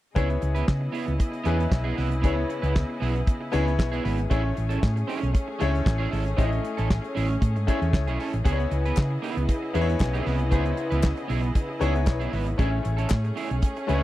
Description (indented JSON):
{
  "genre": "disco",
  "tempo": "116 BPM",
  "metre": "4/4",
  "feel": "straight",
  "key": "unclear",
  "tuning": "A4 = 439 Hz",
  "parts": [
    { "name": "clear grand piano", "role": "accompaniment", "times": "0.2-14.0 s", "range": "A3 to E5", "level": "-31 LUFS", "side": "left 6 dB", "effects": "none" },
    { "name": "electric guitar at the edge of break-up", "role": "accompaniment", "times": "0.2-14.0 s", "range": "B3 to B4", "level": "-32 LUFS", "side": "right 6 dB", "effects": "none" },
    { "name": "clear studio string section", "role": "sustained chords", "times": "0.2-14.0 s", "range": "C#3 to D#5", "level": "-33 LUFS", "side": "equal", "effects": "none" },
    { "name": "hollow-body short-scale fingered electric bass", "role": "bass", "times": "0.2-14.0 s", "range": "G#1 to C#3", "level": "-25 LUFS", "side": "equal", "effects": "none" },
    { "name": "damped 70s drum kit", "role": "drums", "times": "0.2-14.0 s", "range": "handclaps, hi-hat, kick drum, snare drum", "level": "-23 LUFS", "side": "equal", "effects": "none" },
    { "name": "group handclap", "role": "percussion", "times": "9.0-13.2 s", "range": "none", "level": "-38 LUFS", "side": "left 9 dB", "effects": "none" }
  ],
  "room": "studio reverb",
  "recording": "dry, close 1970s-style studio recording",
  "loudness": "-22 LUFS",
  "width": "side -15 dB against mid",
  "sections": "0.2-14.0 A section",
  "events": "grand piano fill 11.8-12.6",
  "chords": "0.2 C#m7; 4.3 Amaj7; 8.5 C#m7; 12.6 Amaj7",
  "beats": "| 0.17 0.69 1.20 1.72 | 2.24 2.76 3.27 3.79 | 4.31 4.83 5.35 5.86 | 6.38 6.90 7.42 7.93 | 8.45 8.97 9.49 10.01 | 10.52 11.04 11.56 12.07 | 12.59 13.11 13.63"
}